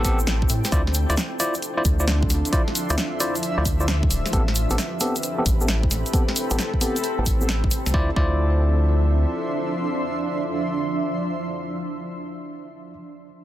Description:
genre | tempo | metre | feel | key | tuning
UK garage, two-step garage | 133 BPM | 4/4 | swing 67% on 16ths | D dorian | A4 = 440 Hz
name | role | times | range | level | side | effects
soft string machine | sustained chords | 0.1-12.3 s | F3 to E5 | -33 LUFS | left 1 dB | phaser, ensemble chorus, sidechain pumping
barky tine electric piano | stabs | 0.0-12.9 s | B3 to D5 | -28 LUFS | equal | low-pass filter, digital delay
rubbery square bass | bass | 0.0-9.3 s | D1 to A2 | -21 LUFS | equal | none
electronic kick drum | drums | 0.0-8.3 s | none | -22 LUFS | equal | none
punchy analog drum machine | drums | 0.0-7.9 s | hi-hat, snare drum | -27 LUFS | equal | none
egg shaker | percussion | 0.0-7.9 s | none | -31 LUFS | equal | none
granular cloud pad | texture | 0.0-12.3 s | F3 to C6 | -28 LUFS | right 1 dB | built-in reverb, sidechain pumping
room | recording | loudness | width
light reverb | dense, heavily limited modern master | -20 LUFS | side -13 dB against mid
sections
0.0-7.9 A section; 7.9-11.5 B section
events
filter sweep on tine electric piano 0.0-7.9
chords
0.0 Am9; 0.7 Dm9; 4.3 Am9; 7.9 Dm9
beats
0.27 | 0.72 1.17 1.62 2.08 | 2.53 2.98 3.43 3.88 | 4.33 4.78 5.23 5.68 | 6.13 6.59 7.04 7.49 | 7.94 8.39 8.84 9.29 | 9.74 10.20 10.65 11.10

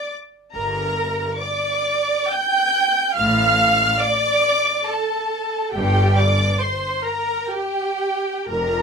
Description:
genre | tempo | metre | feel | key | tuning
classical, slow romantic movement for string orchestra | 60-72 BPM | 3/4 | rubato | unclear | A4 = 440 Hz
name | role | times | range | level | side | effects
dark symphonic violin section | melody | 0.0-8.8 s | G5 to G6 | -22 LUFS | left 2 dB | none
clear chamber violin section | second line | 0.0-8.8 s | G4 to G5 | -24 LUFS | right 1 dB | none
rich chamber viola section | accompaniment | 0.0-8.8 s | G4 to G5 | -23 LUFS | right 3 dB | none
clear chamber cello section | bass | 0.5-8.8 s | F2 to A2 | -25 LUFS | equal | none
clear chamber double bass section | bass | 0.6-8.8 s | F1 to A1 | -25 LUFS | equal | none
room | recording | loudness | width
light reverb | none | -17 LUFS | side -5 dB against mid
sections
0.0-8.8 A section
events
none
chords
0.0 N.C.; 0.5 Gm; 3.2 F/A; 5.7 Gmadd11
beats
| 0.55 1.39 2.30 | 3.16 4.02 4.88 | 5.74 6.62 7.53 | 8.50

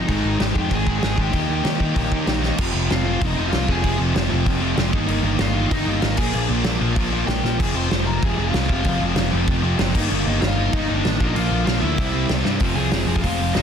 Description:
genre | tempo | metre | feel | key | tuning
punk rock | 192 BPM | 4/4 | straight | F dorian | A4 = 440 Hz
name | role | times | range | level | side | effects
lead guitar through a small cranked amp | melody | 0.0-13.6 s | D4 to C6 | -28 LUFS | left 2 dB | overdrive, digital delay
overdriven electric guitar | riff | 0.0-13.6 s | F2 to Eb4 | -26 LUFS | left 12 dB | none
sludgy distorted guitar | riff | 0.0-13.6 s | F2 to Eb4 | -26 LUFS | right 13 dB | overdrive
cranked stack guitar | riff | 0.1-13.6 s | F2 to F4 | -29 LUFS | equal | overdrive
picked electric bass | bass | 0.1-13.6 s | F1 to Eb3 | -24 LUFS | equal | none
loose indie drum kit | drums | 0.1-13.6 s | crash cymbal, hi-hat, kick drum, snare drum | -24 LUFS | equal | none
room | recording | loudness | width
little or no reverb | dense, heavily limited modern master | -18 LUFS | side -8 dB against mid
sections
0.0-2.6 A section; 2.6-12.6 B section; 12.6-13.6 C section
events
drum fill 2.4, 7.4, 12.5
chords
0.1 Ab; 1.3 Eb; 2.6 Fm; 4.9 Eb/G; 6.2 Bb; 7.6 Fm; 9.9 Eb/G; 11.2 Bb; 12.0 C7; 12.6 Fm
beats
| 0.08 0.40 0.71 1.02 | 1.33 1.65 1.96 2.27 | 2.58 2.90 3.21 3.52 | 3.84 4.15 4.46 4.77 | 5.09 5.40 5.71 6.03 | 6.34 6.65 6.97 7.28 | 7.59 7.91 8.22 8.53 | 8.85 9.16 9.47 9.79 | 10.10 10.41 10.73 11.04 | 11.35 11.67 11.98 12.29 | 12.61 12.92 13.23 13.55

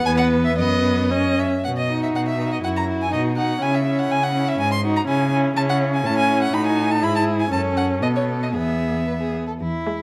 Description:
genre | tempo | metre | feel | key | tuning
quick classical-period movement for string quartet | 111-126 BPM | 2/4 | rubato | B major, E major from 5.6 s | A4 = 440 Hz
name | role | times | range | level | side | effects
rich violin | melody | 0.0-10.0 s | B4 to B#5 | -27 LUFS | equal | none
rich violin | second line | 0.0-10.0 s | E4 to G#5 | -31 LUFS | equal | none
clear cello | bass | 0.0-10.0 s | E2 to C#3 | -26 LUFS | equal | none
rich viola | accompaniment | 0.1-10.0 s | G#3 to E4 | -25 LUFS | equal | none
room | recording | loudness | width
moderate recital hall reverb, RT60 1.4 s | close, detailed microphones | -21 LUFS | mono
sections
0.0-1.6 A section; 1.6-9.6 B section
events
none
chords
0.1 E5; 0.6 B/F#; 1.1 F#5; 1.6 B; 2.6 F#7(no3); 3.1 B; 3.6 C#m; 4.6 G#7(no3); 5.1 C#m; 6.0 A; 6.5 F#m69/A; 7.0 E/G#; 7.5 F#m; 8.0 B7(no3); 8.5 E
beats
0.06 | 0.58 1.11 | 1.64 2.14 | 2.63 3.13 | 3.62 4.11 | 4.60 5.08 | 5.56 6.04 | 6.53 7.02 | 7.51 8.02 | 8.55 9.08 | 9.61

